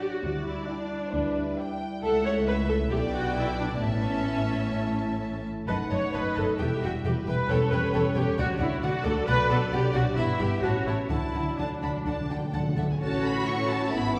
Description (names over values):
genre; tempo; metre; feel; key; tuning
quick classical-period movement for symphony orchestra; 132 BPM; 4/4; rubato; D major; A4 = 441 Hz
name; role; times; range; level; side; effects
rich chamber violin section; melody; 0.0-14.2 s; B4 to D6; -40 LUFS; equal; none
warm chamber violin section; second line; 0.0-14.2 s; F#4 to B5; -39 LUFS; equal; none
rich symphonic viola section; accompaniment; 0.0-14.2 s; A3 to C#5; -31 LUFS; equal; none
mellow French horn section; sustained chords; 0.0-14.2 s; E3 to E4; -36 LUFS; equal; none
warm chamber double bass section; bass; 0.2-14.2 s; E1 to A2; -34 LUFS; equal; none
warm symphonic cello section; bass; 0.2-14.2 s; C#2 to F#4; -36 LUFS; equal; none
timpani; percussion; 3.8-4.5, 8.4-13.0 s; A2 to D3; -36 LUFS; equal; none
room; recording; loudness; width
wet scoring stage reverb, RT60 1.7 s; heard from further back in the room; -27 LUFS; mono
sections
0.0-13.0 A section; 13.0-14.2 B section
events
timpani fill 11.1-13.0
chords
0.2 Em7/D; 2.0 A/C#; 2.9 G/B; 3.8 A; 5.7 F#m6; 6.6 Em; 7.5 Em6; 8.4 D; 9.3 Bm; 10.2 Em/G; 10.6 A; 11.1 D; 13.0 A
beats
| 0.24 0.69 1.14 1.59 | 2.04 2.48 2.92 3.37 | 3.83 4.28 4.75 5.21 | 5.68 6.14 6.60 7.05 | 7.50 7.94 8.38 8.83 | 9.28 9.72 10.17 10.63 | 11.11 11.59 12.06 12.54 | 13.01 13.47 13.92